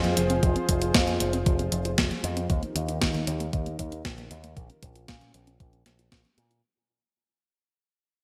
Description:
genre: italo disco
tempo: 116 BPM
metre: 4/4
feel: straight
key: unclear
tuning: A4 = 444 Hz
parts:
  - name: warm analog pad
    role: sustained chords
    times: 0.0-6.6 s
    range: Eb3 to C5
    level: -33 LUFS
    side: equal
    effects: chorus
  - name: soft round pluck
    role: arpeggios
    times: 0.0-6.6 s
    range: Eb3 to Bb4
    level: -37 LUFS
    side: equal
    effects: chorus, cassette tape, delay
  - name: picked electric bass with an envelope filter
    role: bass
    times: 0.0-6.6 s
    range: F1 to Bb2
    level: -34 LUFS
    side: equal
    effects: delay
  - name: clean 12-bit digital drum machine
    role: drums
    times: 0.0-6.6 s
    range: hi-hat, snare drum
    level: -30 LUFS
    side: equal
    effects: overdrive, gated reverb
  - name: electronic kick drum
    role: drums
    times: 0.4-6.2 s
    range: none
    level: -30 LUFS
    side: equal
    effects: overdrive
room: moderate lush hall reverb, RT60 1.7 s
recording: bright 1980s-style digital production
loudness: -26 LUFS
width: mono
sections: 0.0-6.6 A section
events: fade-out 0.0-6.6; filter sweep on synth arpeggio sound 0.0-6.6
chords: 0.0 Fm; 2.5 Eb; 4.6 Bbm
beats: | 0.43 0.94 1.46 1.98 | 2.50 3.01 3.53 4.05 | 4.57 5.08 5.60 6.12

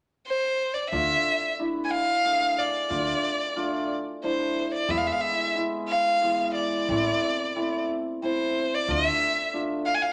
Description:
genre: klezmer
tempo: 90 BPM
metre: 3/4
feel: straight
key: D dorian sharp4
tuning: A4 = 442 Hz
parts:
  - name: clear violin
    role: melody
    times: 0.3-10.1 s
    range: C5 to G#5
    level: -27 LUFS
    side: equal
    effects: none
  - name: hammered dulcimer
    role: accompaniment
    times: 0.9-9.9 s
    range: E3 to G#4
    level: -31 LUFS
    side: equal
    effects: none
  - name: upright bass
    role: bass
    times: 0.9-9.1 s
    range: A1 to E2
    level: -36 LUFS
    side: equal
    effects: none
room: wet large studio reverb, RT60 0.9 s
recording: none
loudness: -26 LUFS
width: mono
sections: 0.9-10.1 A section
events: none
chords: 0.0 N.C.; 0.9 Dm; 4.9 E; 6.9 Am; 8.9 Dm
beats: 0.27 | 0.93 1.59 2.25 | 2.92 3.58 4.24 | 4.91 5.57 6.23 | 6.89 7.56 8.22 | 8.88 9.55

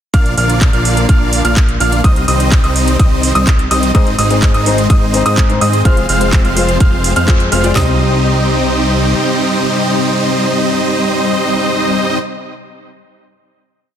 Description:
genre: EDM, festival progressive house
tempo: 126 BPM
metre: 4/4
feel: straight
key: C minor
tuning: A4 = 440 Hz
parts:
  - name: lush unison pad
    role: sustained chords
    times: 0.1-12.2 s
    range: C3 to G5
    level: -22 LUFS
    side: equal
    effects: chorus, sidechain pumping
  - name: clear grand piano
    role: arpeggios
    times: 0.1-12.2 s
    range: Eb6 to F6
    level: -20 LUFS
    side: right 1 dB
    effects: sidechain pumping, tape echo
  - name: dense compressed supersaw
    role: riff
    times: 0.1-12.2 s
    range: G3 to F5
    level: -15 LUFS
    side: equal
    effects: sidechain pumping, tape echo
  - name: fat analog bass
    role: bass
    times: 0.1-9.1 s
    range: F1 to Ab2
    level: -16 LUFS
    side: equal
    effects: sidechain pumping
  - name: house drum kit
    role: drums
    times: 0.1-7.9 s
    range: handclaps, kick drum, snare drum, toms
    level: -11 LUFS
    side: equal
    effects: none
  - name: house drum kit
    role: drums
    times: 0.1-7.7 s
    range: handclaps, hi-hat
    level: -20 LUFS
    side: right 2 dB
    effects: none
  - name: felt-muted upright piano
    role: accompaniment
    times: 3.9-12.2 s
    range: Ab2 to D5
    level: -21 LUFS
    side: left 4 dB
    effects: sidechain pumping, tape echo
room: light reverb, digital ambience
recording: dense, heavily limited modern master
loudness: -10 LUFS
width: side -9 dB against mid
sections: 0.1-7.8 drop; 7.8-11.6 final chord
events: drop 0.1-7.8; band accent 7.3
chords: 0.1 Bb; 2.0 Cm; 3.9 Ab; 5.9 Fm; 7.8 Cm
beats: | 0.14 0.61 1.09 1.57 | 2.04 2.52 3.00 3.47 | 3.95 4.42 4.90 5.38 | 5.85 6.33 6.80 7.28 | 7.76 8.23 8.71 9.19 | 9.66 10.14 10.61 11.09

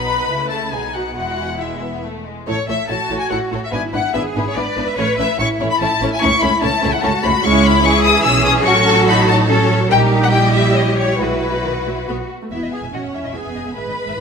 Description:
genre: quick classical-period movement for string orchestra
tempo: 144 BPM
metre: 3/4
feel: rubato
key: A major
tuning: A4 = 442 Hz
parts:
  - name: warm symphonic violin section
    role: melody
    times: 0.0-14.2 s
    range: B4 to E6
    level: -18 LUFS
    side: left 4 dB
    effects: none
  - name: warm symphonic violin section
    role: second line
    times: 0.0-14.2 s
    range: G#3 to B5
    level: -23 LUFS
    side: left 3 dB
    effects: none
  - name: warm symphonic viola section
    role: accompaniment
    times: 0.0-14.2 s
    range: D#3 to B4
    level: -21 LUFS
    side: right 2 dB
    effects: none
  - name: dark symphonic double bass section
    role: bass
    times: 0.0-14.2 s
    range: E1 to C#2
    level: -22 LUFS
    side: right 3 dB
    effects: none
  - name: rich symphonic cello section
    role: bass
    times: 0.0-14.2 s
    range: E2 to B4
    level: -23 LUFS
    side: right 2 dB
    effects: none
room: moderate scoring stage reverb, RT60 1.9 s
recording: none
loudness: -14 LUFS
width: side -6 dB against mid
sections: 0.0-2.5 A section; 2.5-12.5 B section; 12.5-14.2 A section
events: none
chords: 0.3 A/C#; 0.7 B; 1.2 E; 2.5 A; 3.7 E7/G#; 5.0 A; 6.2 A/C#; 7.4 C#m; 8.7 F#m/A; 9.9 A#dim7; 11.2 Bsus4; 12.1 B5; 12.5 E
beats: 0.32 0.73 | 1.17 1.61 2.05 | 2.48 2.90 3.31 | 3.73 4.15 4.57 | 4.98 5.40 5.81 | 6.22 6.63 7.04 | 7.45 7.85 8.26 | 8.67 9.08 9.50 | 9.91 10.33 10.76 | 11.20 11.64 12.08 | 12.52 12.94 13.35 | 13.77 14.18

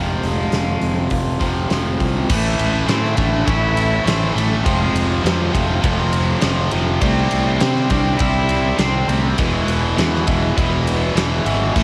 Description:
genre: quiet-loud alternative rock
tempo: 102 BPM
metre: 4/4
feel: straight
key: A minor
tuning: A4 = 440 Hz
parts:
  - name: rich cello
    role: melody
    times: 0.0-11.8 s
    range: Ab3 to E4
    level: -27 LUFS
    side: equal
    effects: cassette tape
  - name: electric guitar through a small old amp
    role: arpeggios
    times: 0.0-2.3 s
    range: F2 to F4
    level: -33 LUFS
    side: equal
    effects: none
  - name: biting overdriven guitar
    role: riff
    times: 0.0-11.8 s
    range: E2 to C4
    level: -23 LUFS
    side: equal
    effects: none
  - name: fuzz fingered electric bass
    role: bass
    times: 0.0-11.8 s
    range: E1 to C3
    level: -23 LUFS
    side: equal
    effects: overdrive
  - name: huge arena drum kit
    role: drums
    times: 0.2-11.8 s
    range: crash cymbal, hi-hat, kick drum, ride cymbal, snare drum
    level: -24 LUFS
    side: equal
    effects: cassette tape
room: small room ambience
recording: home recording on cassette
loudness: -18 LUFS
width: mono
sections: 0.0-2.3 A section; 2.3-11.8 B section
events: none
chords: 0.0 Fm; 2.3 A5; 4.7 Fm; 7.0 C; 9.4 E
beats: 0.52 1.11 1.71 | 2.30 2.89 3.48 4.07 | 4.66 5.25 5.83 6.42 | 7.01 7.61 8.20 8.79 | 9.38 9.97 10.56 11.15 | 11.74

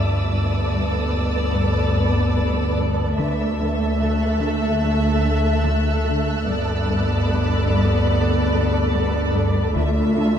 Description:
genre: cinematic, suspense film score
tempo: 73 BPM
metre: 4/4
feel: straight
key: unclear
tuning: A4 = 441 Hz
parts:
  - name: warm symphonic violin section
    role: melody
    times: 0.0-10.4 s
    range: D5 to E5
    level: -30 LUFS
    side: equal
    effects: none
  - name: warm symphonic viola section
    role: accompaniment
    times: 0.0-10.4 s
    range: A3 to A4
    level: -26 LUFS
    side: equal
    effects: none
  - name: flickering grainy texture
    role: sustained chords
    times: 0.0-10.4 s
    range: A4 to B5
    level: -26 LUFS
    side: equal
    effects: built-in reverb
  - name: rich symphonic cello section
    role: riff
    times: 0.0-10.4 s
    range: G2 to D3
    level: -29 LUFS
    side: left 1 dB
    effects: none
  - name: dark symphonic double bass section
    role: bass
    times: 0.0-10.4 s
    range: G1 to D2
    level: -26 LUFS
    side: equal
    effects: none
  - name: warm symphonic cello section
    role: bass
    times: 0.0-10.4 s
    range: D2 to G2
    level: -25 LUFS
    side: equal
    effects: none
  - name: saturated sub bass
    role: drone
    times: 0.0-10.4 s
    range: D2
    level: -24 LUFS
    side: equal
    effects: lush chorus
  - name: warm symphonic violin section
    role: texture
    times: 0.0-9.3 s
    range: D6 to F#6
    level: -33 LUFS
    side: right 1 dB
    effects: none
  - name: taiko ensemble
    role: drums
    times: 3.2-4.8, 9.8-10.4 s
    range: none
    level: -29 LUFS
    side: equal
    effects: none
room: moderate cathedral reverb, RT60 5.1 s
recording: in a vast, echoing space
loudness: -18 LUFS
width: side -8 dB against mid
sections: 0.0-10.4 A section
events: none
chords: 0.0 Gadd9; 3.2 Dsus2; 6.5 Gadd9; 9.8 Dmadd9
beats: 0.72 1.54 2.36 | 3.18 4.00 4.83 5.65 | 6.47 7.29 8.11 8.94 | 9.76

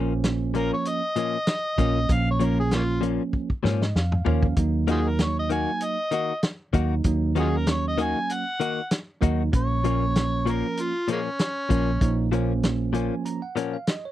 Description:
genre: straight-eighth soul blues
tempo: 97 BPM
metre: 4/4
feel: swing 54% on 16ths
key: Bb minor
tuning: A4 = 439 Hz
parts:
  - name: bell-like tine electric piano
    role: accompaniment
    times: 0.0-14.1 s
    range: F3 to Bb5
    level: -28 LUFS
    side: right 6 dB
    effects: none
  - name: direct-recorded clean electric guitar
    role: stabs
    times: 0.0-13.8 s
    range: Bb2 to Gb4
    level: -27 LUFS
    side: left 8 dB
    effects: none
  - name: vintage muted fingered electric bass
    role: bass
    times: 0.0-13.1 s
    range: Bb1 to Ab2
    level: -25 LUFS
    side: equal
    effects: none
  - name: warm soul drum kit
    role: drums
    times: 0.2-14.0 s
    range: hi-hat, kick drum, snare drum, toms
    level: -25 LUFS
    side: equal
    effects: none
  - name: overdriven harmonica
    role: melody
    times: 0.6-12.3 s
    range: Ab3 to Ab5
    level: -27 LUFS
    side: equal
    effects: none
room: little or no reverb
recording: dry, close 1970s-style studio recording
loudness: -22 LUFS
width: side -13 dB against mid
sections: 0.0-14.1 A section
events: drum fill 3.3-4.6; tine electric piano fill 3.3-4.6, 12.6-14.1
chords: 0.0 Bbm; 4.6 Ebm; 9.5 Bbm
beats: 0.24 0.86 1.48 | 2.10 2.71 3.33 3.95 | 4.57 5.19 5.81 6.43 | 7.05 7.67 8.29 8.91 | 9.53 10.15 10.77 11.39 | 12.01 12.63 13.25 13.87

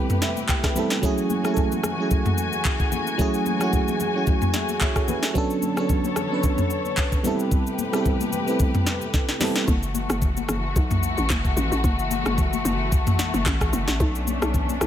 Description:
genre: amapiano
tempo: 111 BPM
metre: 4/4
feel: swing 55% on 16ths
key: F# minor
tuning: A4 = 440 Hz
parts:
  - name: FM electric piano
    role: accompaniment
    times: 0.0-9.7 s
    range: F#3 to B5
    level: -25 LUFS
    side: right 3 dB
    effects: chorus
  - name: muted studio string section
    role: sustained chords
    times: 0.0-14.9 s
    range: C3 to G#5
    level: -28 LUFS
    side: left 3 dB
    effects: none
  - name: afro-pop drum kit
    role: drums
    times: 0.1-14.9 s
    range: handclaps, hi-hat, kick drum, rim click, shaker, snare drum, toms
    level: -23 LUFS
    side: equal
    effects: none
  - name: congas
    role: percussion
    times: 0.1-14.9 s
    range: none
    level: -32 LUFS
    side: left 10 dB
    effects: none
  - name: hollow log drum bass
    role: bass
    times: 9.7-14.9 s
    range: F#1 to B1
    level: -26 LUFS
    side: equal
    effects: none
room: light reverb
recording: none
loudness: -20 LUFS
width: side -10 dB against mid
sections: 0.0-9.7 A section; 9.7-14.9 B section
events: FM electric piano fill 0.0-1.0; drum fill 9.1-9.7; drop 9.7-14.9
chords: 0.0 Am9; 1.0 F#m9; 5.4 Bm9; 7.2 Am9; 9.7 F#m9; 14.0 Bm9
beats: 0.49 | 1.03 1.57 2.11 2.65 | 3.19 3.73 4.27 4.81 | 5.35 5.89 6.43 6.97 | 7.51 8.06 8.60 9.14 | 9.68 10.22 10.76 11.30 | 11.84 12.38 12.92 13.46 | 14.00 14.54

